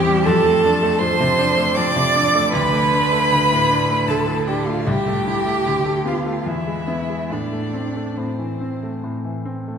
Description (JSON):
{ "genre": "classical, slow romantic movement for piano trio", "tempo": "69-81 BPM", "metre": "3/4", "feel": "rubato", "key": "A minor", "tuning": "A4 = 441 Hz", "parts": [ { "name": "warm violin", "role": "melody", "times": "0.0-9.0 s", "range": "C5 to D6", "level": "-24 LUFS", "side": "left 4 dB", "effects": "none" }, { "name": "rich cello", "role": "second line", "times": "0.0-9.0 s", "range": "C4 to D5", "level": "-20 LUFS", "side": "right 4 dB", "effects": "none" }, { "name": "bright concert grand piano", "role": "accompaniment", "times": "0.0-9.8 s", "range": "C2 to E4", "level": "-21 LUFS", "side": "left 1 dB", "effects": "none" } ], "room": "wet concert hall reverb, RT60 2.3 s", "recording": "none", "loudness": "-17 LUFS", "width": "side -7 dB against mid", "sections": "0.0-9.8 A section", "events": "none", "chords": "0.2 F6; 2.5 D5; 4.9 Am/C; 5.7 Bm7b5/D; 6.5 E; 7.3 Am" }